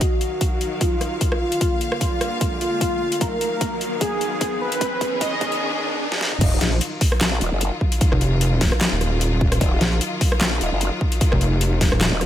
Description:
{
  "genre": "heavy wobble dubstep",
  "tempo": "150 BPM",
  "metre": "4/4",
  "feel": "swing 54% on 16ths, half-time",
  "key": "Eb harmonic minor, Eb minor from 6.4 s",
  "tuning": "A4 = 439 Hz",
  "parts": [
    { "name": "soft supersaw", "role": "melody", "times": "0.0-5.6 s", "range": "F4 to Eb5", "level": "-24 LUFS", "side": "equal", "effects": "low-pass filter, dub echo" },
    { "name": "clear studio string section", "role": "sustained chords", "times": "0.0-12.3 s", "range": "D3 to F5", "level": "-28 LUFS", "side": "left 2 dB", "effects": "sidechain pumping" },
    { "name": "dubstep drum kit", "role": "drums", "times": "0.0-12.3 s", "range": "crash cymbal, handclaps, hi-hat, rim click, snare drum, toms", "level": "-24 LUFS", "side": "left 1 dB", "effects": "overdrive, studio reverb" },
    { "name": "electronic kick drum", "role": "drums", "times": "0.0-11.9 s", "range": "none", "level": "-21 LUFS", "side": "equal", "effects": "overdrive, studio reverb" },
    { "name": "riser", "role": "sound effects", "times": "0.0-6.4 s", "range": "none", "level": "-31 LUFS", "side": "right 1 dB", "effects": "none" },
    { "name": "growl bass", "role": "bass", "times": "6.4-12.3 s", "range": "Eb1 to Bb1", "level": "-23 LUFS", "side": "equal", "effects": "chorus, overdrive" },
    { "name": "pulsing pluck wobble bass", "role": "bass", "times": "6.6-12.1 s", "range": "Eb1 to Bb1", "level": "-19 LUFS", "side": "equal", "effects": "chorus, overdrive" }
  ],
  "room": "light reverb, digital ambience",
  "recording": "high-pass filter",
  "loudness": "-18 LUFS",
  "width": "side -11 dB against mid",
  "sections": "0.0-6.4 A section; 6.4-12.3 B section",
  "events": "build-up 0.0-6.4; riser 0.0-6.4; filter sweep on supersaw synth 0.0-6.4; filter sweep 0.0-6.4; drum fill 3.2-5.6, 6.1; drop 6.4-12.3",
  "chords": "0.0 Ebmadd9; 1.6 Bb; 3.2 Ebmadd9; 4.8 Abm; 6.4 Ebmadd9"
}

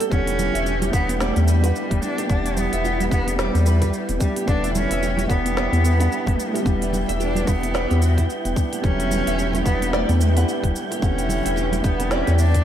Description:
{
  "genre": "organic downtempo",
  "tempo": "110 BPM",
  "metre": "4/4",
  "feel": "swing 58% on 16ths",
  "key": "E dorian",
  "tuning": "A4 = 441 Hz",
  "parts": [
    { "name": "felt-muted upright piano", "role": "accompaniment", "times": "0.0-12.6 s", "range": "D3 to F#5", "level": "-28 LUFS", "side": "right 3 dB", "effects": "vintage 12-bit sampler grit, sidechain pumping, tape echo" },
    { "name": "nylon-string guitar", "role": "arpeggios", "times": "0.0-12.6 s", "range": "B3 to E5", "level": "-29 LUFS", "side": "right 2 dB", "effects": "analog chorus, tape echo" },
    { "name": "organic electronic drum kit", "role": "drums", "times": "0.0-12.6 s", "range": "cabasa, hi-hat, snare drum", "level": "-31 LUFS", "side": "right 1 dB", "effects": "none" },
    { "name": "wind-like tuned noise texture", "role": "texture", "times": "0.0-12.6 s", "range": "G5", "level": "-35 LUFS", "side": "right 1 dB", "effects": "built-in reverb" },
    { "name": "rich cello", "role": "melody", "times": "0.1-12.6 s", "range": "G3 to D4", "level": "-26 LUFS", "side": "left 1 dB", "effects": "ping-pong delay" },
    { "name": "airy breathy pad", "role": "sustained chords", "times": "0.5-12.6 s", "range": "E4 to E5", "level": "-30 LUFS", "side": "equal", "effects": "chorus, sidechain pumping" },
    { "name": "round analog bass", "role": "bass", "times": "0.1-12.6 s", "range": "E1 to E2", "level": "-21 LUFS", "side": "equal", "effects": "none" },
    { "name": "electronic kick drum", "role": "drums", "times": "0.1-12.6 s", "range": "none", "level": "-22 LUFS", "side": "equal", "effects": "none" },
    { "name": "congas and bongos", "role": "percussion", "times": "0.1-12.4 s", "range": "none", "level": "-30 LUFS", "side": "right 2 dB", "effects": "none" }
  ],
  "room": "moderate lush hall reverb, RT60 1.6 s, small room ambience",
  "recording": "dreamy mix soaked in reverb",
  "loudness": "-18 LUFS",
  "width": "side -10 dB against mid",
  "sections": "0.0-12.6 A section",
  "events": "none",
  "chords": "0.0 Em7"
}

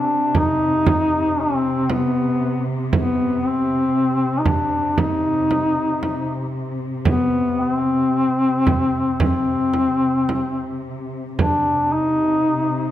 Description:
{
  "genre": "caucasian folk, Caucasian lament",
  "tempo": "57 BPM",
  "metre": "4/4",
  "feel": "rubato",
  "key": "C harmonic minor",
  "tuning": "A4 = 441 Hz",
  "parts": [
    { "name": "warm duduk", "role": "melody", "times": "0.0-12.9 s", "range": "B3 to Eb4", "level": "-18 LUFS", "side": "left 1 dB", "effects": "none" },
    { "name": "muted studio cello section", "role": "drone", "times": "0.0-12.9 s", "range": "C3", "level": "-27 LUFS", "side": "left 1 dB", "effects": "none" },
    { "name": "frame drum", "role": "percussion", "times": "0.3-11.6 s", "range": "none", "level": "-22 LUFS", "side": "right 3 dB", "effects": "none" }
  ],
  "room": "moderate concert hall reverb, RT60 2.4 s",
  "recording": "none",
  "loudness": "-17 LUFS",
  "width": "side -12 dB against mid",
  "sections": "0.0-12.9 A section",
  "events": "none",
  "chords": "none"
}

